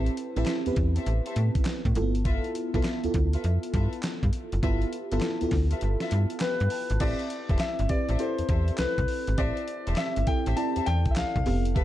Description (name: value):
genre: R&B, new jack swing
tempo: 101 BPM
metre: 4/4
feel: swing 65% on 16ths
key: A minor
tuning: A4 = 444 Hz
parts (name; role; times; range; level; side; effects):
- FM electric piano with soft pad layer; accompaniment; 0.0-11.8 s; A3 to A5; -31 LUFS; right 2 dB; chorus
- dark studio string section; stabs; 0.0-11.8 s; F4 to E5; -38 LUFS; left 3 dB; ping-pong delay
- slap-like FM bass; bass; 0.0-11.8 s; E1 to A2; -26 LUFS; equal; none
- dusty soul sampler-style drum kit; drums; 0.1-11.8 s; crash cymbal, handclaps, hi-hat, kick drum, snare drum; -29 LUFS; equal; none
- warm concert grand piano; melody; 6.4-11.6 s; B4 to A5; -31 LUFS; left 4 dB; none
room: light reverb, digital ambience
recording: dark, warm production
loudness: -24 LUFS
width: side -13 dB against mid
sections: 0.0-7.0 A section; 7.0-11.8 B section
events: kick muted 5.8-7.0; FM electric piano fill 5.8-7.0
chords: 0.0 Am7; 2.0 G13; 7.0 Am7